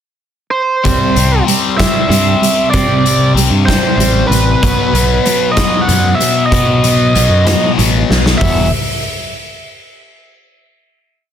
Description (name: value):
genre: quiet-loud alternative rock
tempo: 64 BPM (dotted quarters)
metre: 6/8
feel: straight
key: E minor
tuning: A4 = 437 Hz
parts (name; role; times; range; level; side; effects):
- biting lead guitar; melody; 0.5-8.7 s; B4 to F#5; -16 LUFS; right 3 dB; overdrive, digital delay
- twelve-string electric guitar; arpeggios; 0.8-8.7 s; B2 to F#4; -20 LUFS; right 4 dB; harmonic tremolo
- crunchy overdriven guitar; riff; 0.8-8.7 s; E2 to C4; -16 LUFS; left 9 dB; phaser
- modern bright picked electric bass; bass; 0.9-8.7 s; E1 to C3; -14 LUFS; equal; none
- oversized low-tuned drum kit; drums; 0.9-8.6 s; hi-hat, kick drum, snare drum; -16 LUFS; left 1 dB; none
room: little or no reverb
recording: dense, heavily limited modern master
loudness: -10 LUFS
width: side -9 dB against mid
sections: 0.0-0.8 pickup bar; 0.8-8.4 pre-chorus; 8.4-10.3 final chord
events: drum fill 8.1-8.4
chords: 0.0 N.C.; 0.8 C; 4.6 B; 8.4 Emadd9